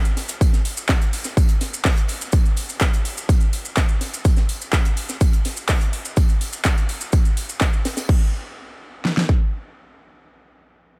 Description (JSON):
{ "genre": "house", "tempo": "125 BPM", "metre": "4/4", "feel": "straight", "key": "none", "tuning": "none", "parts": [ { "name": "maracas", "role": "percussion", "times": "0.0-8.1 s", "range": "none", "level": "-35 LUFS", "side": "equal", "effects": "none" }, { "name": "big-room dance drum kit", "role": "drums", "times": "0.1-8.2 s", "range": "crash cymbal, handclaps, hi-hat", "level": "-30 LUFS", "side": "equal", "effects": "overdrive" }, { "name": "tight funk drum kit", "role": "drums", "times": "0.2-8.1 s", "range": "hi-hat, snare drum, tambourine", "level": "-36 LUFS", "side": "equal", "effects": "sidechain pumping on hats, high-pass filter on hats, high-pass filter on snare, sidechain pumping on perc, high-pass filter on perc, high-pass filter on room" }, { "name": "big-room dance drum kit", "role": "drums", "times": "0.4-9.4 s", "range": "kick drum, snare drum", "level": "-20 LUFS", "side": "equal", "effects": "overdrive" } ], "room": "studio ambience", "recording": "none", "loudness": "-20 LUFS", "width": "mono", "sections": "0.0-8.1 A section; 8.1-11.0 B section", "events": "none", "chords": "none" }